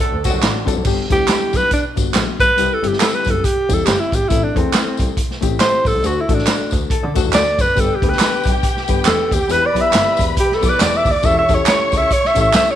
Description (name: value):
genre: uptempo 1960s-style soul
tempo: 139 BPM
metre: 4/4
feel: swing 59% on 8ths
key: G major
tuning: A4 = 441 Hz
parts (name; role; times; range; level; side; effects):
- breathy alto saxophone; melody; 0.0-12.8 s; C4 to E5; -17 LUFS; right 1 dB; none
- mellow horn section; second line; 0.0-0.7 s; D3 to A4; -27 LUFS; right 10 dB; none
- vintage hollow-body jazz guitar; riff; 0.0-0.8, 6.9-7.7 s; D4 to A4; -26 LUFS; left 11 dB; none
- tambourine and handclaps; percussion; 0.0-12.7 s; none; -23 LUFS; right 5 dB; none
- rich double bass; bass; 0.1-12.6 s; E1 to D3; -23 LUFS; equal; none
- vintage drum kit; drums; 0.2-12.7 s; crash cymbal, hi-hat, kick drum, snare drum; -19 LUFS; equal; none
- barky reed electric piano; accompaniment; 0.7-12.8 s; G3 to D5; -24 LUFS; left 11 dB; overdrive
- warm studio string section; second line; 7.8-12.8 s; G4 to D6; -24 LUFS; left 2 dB; none
room: moderate echo chamber reverb, RT60 1.3 s, small room ambience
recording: 1960s-style stereo with parts hard left and right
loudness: -14 LUFS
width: side -11 dB against mid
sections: 0.9-12.8 A section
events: alto saxophone solo 0.9-12.8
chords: 0.0 D7; 0.9 G; 2.6 C; 4.3 Am; 6.0 D; 7.8 G; 11.2 A7/E